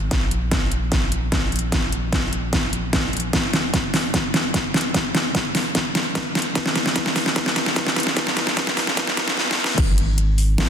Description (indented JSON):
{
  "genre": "future bass",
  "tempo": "149 BPM",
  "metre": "4/4",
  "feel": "half-time",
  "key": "unclear",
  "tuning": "A4 = 440 Hz",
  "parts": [
    { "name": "saturated sub bass", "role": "bass", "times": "0.0-10.7 s", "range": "F1 to Bb1", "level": "-26 LUFS", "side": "equal", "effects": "tube saturation, sidechain pumping" },
    { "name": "electronic kick drum", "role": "drums", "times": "0.1-9.9 s", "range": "none", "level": "-24 LUFS", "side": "equal", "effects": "none" },
    { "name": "pop drum kit", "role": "drums", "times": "0.1-10.7 s", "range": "crash cymbal, hi-hat, snare drum", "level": "-20 LUFS", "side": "equal", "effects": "overdrive" }
  ],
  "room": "moderate lush hall reverb, RT60 1.9 s",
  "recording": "dense, heavily limited modern master, high-pass filter",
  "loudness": "-18 LUFS",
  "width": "side -8 dB against mid",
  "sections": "0.0-9.8 A section",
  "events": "build-up 0.0-9.8; drum fill 0.0-9.4, 9.4-9.8; filter sweep 0.0-9.8",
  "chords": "none"
}